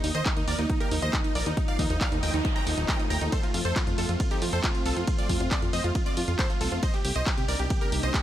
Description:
uplifting trance; 137 BPM; 4/4; straight; A4 = 441 Hz
supersaw stab; melody; 0.0-8.2 s; Eb4 to Bb5; -32 LUFS; right 1 dB; sidechain pumping, dub echo
analog pluck; second line; 0.0-8.2 s; Eb4 to Bb5; -36 LUFS; right 1 dB; chorus, sidechain pumping
lush unison pad; sustained chords; 0.0-8.2 s; C3 to Eb4; -35 LUFS; left 1 dB; chorus, sidechain pumping
plucky analog bass; bass; 0.0-8.1 s; Eb1 to F2; -29 LUFS; equal; sidechain pumping
punchy analog drum machine; drums; 0.0-8.2 s; handclaps, hi-hat, ride cymbal; -33 LUFS; equal
electronic kick drum; drums; 0.3-8.2 s; -28 LUFS; equal; overdrive
noise sweep; sound effects; 2.0-3.3 s; -38 LUFS; right 1 dB
little or no reverb; -24 LUFS; side -12 dB against mid
0.0-8.2 A section
noise sweep 2.0-3.3
0.0 Ebsus2; 3.3 F; 6.8 Cm7
0.26 0.70 1.13 | 1.57 2.01 2.45 2.89 | 3.32 3.76 4.20 4.64 | 5.08 5.51 5.95 6.39 | 6.83 7.27 7.70 8.14

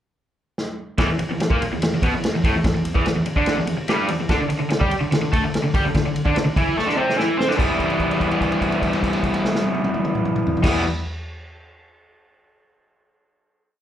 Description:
garage rock duo or trio; 145 BPM; 4/4; straight; E minor; A4 = 440 Hz
vintage drum kit; drums; 0.6-10.7 s; crash cymbal, kick drum, ride cymbal, snare drum, toms; -23 LUFS; equal
raw garage guitar; riff; 1.0-10.8 s; E2 to C5; -20 LUFS; equal; overdrive, slapback echo
light reverb; live gig heard through the venue's PA, club reverb; -18 LUFS; side -10 dB against mid
0.0-1.0 pickup bar; 1.0-7.6 riff; 7.6-10.9 final chord
drum fill 0.6-1.0, 6.8-7.6; held note 7.6-10.6
0.0 N.C.; 4.3 D5; 7.6 Em
0.15 0.57 | 0.98 1.40 1.81 2.22 | 2.64 3.05 3.46 3.88 | 4.29 4.70 5.11 5.53 | 5.94 6.35 6.76 7.17 | 7.58 8.00 8.41 8.82 | 9.23 9.64 10.06 10.47

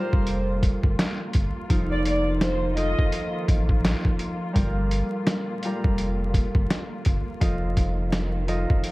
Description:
hip hop, boom-bap hip-hop; 84 BPM; 4/4; swing 59% on 16ths; G minor; A4 = 440 Hz
warm studio violin section; melody; 0.0-3.3 s; C5 to Eb5; -29 LUFS; equal; high-pass filter, low-pass filter, slapback echo
concert harp; accompaniment; 0.0-8.9 s; F3 to Eb5; -28 LUFS; equal; high-pass filter, low-pass filter
muted studio string section; sustained chords; 0.0-8.9 s; Bb2 to F4; -36 LUFS; left 1 dB; high-pass filter, low-pass filter
warm sub bass; bass; 0.1-8.8 s; F1 to A1; -26 LUFS; equal
trip hop sampler-style drum kit; drums; 0.1-8.9 s; hi-hat, kick drum, snare drum; -24 LUFS; equal
finger snaps; percussion; 1.0-8.3 s; -42 LUFS; left 3 dB
studio reverb; dark, warm production, vinyl crackle; -22 LUFS; side -20 dB against mid
0.0-8.9 A section
0.0 Gm9; 1.7 F7; 4.6 Gm9; 7.4 F7
0.27 0.98 | 1.70 2.41 3.13 3.84 | 4.56 5.27 5.99 6.70 | 7.41 8.13 8.84

